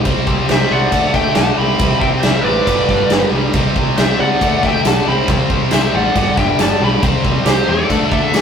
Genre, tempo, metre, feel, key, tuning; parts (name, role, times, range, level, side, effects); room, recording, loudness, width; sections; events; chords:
classic rock; 138 BPM; 4/4; straight; A4 = 440 Hz
tight distorted guitar; riff; 0.0-8.4 s; G2 to D4; -18 LUFS; equal; distortion
growling fingered electric bass; bass; 0.0-8.4 s; G1 to E2; -21 LUFS; equal; overdrive
big rock drum kit; drums; 0.1-8.4 s; crash cymbal, kick drum, snare drum; -17 LUFS; equal
smooth overdriven lead guitar; melody; 0.5-8.4 s; C5 to B5; -20 LUFS; left 2 dB; wah
lead guitar through a small cranked amp; second line; 0.5-8.4 s; G4 to G5; -21 LUFS; right 3 dB; overdrive
tambourine; percussion; 4.0-8.4 s; -36 LUFS; right 4 dB
moderate stone room reverb, RT60 1.1 s; rough rehearsal-room recording; -12 LUFS; side -7 dB against mid
0.0-8.4 A section
0.1 C5; 0.9 D5; 1.6 C5; 2.7 G; 3.5 C5; 4.4 D5; 5.1 C5; 6.2 G; 7.0 C; 7.9 D5